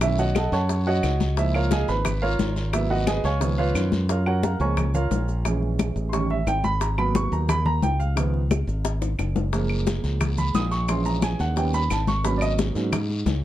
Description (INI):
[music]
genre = Afro-Cuban jazz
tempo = 177 BPM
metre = 4/4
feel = straight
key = Db major, F# major from 4.1 s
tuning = A4 = 440 Hz
[part]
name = warm grand piano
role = accompaniment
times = 0.0-12.9 s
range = Eb3 to D#6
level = -26 LUFS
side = right 3 dB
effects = none
[part]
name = modern bright fingered electric bass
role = bass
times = 0.0-13.4 s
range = F#1 to G#2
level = -24 LUFS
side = equal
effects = none
[part]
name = bongos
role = percussion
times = 0.0-13.4 s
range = none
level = -32 LUFS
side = left 6 dB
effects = none
[part]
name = claves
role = percussion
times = 0.0-13.1 s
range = none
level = -35 LUFS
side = equal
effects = none
[part]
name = congas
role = percussion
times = 0.0-13.4 s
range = none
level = -28 LUFS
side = left 3 dB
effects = none
[part]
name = guiro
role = percussion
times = 0.0-4.1, 9.5-13.4 s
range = none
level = -39 LUFS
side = left 4 dB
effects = none
[part]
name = maracas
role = percussion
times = 0.0-13.4 s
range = none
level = -41 LUFS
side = right 6 dB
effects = none
[sound]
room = light reverb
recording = dark, warm production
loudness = -21 LUFS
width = side -13 dB against mid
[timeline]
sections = 0.0-4.1 A section; 4.1-13.4 A section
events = grand piano solo 0.0-13.4; drum fill 8.9-9.5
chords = 0.0 Cb9; 1.4 Db69; 2.7 Abm7; 3.4 Db9; 4.1 F#maj9; 5.5 A#m7b5; 6.1 A7#11; 6.8 G#m9; 8.2 C#9; 9.5 F#maj7; 10.9 A#m7b5; 11.6 D#aug7; 12.2 G#m11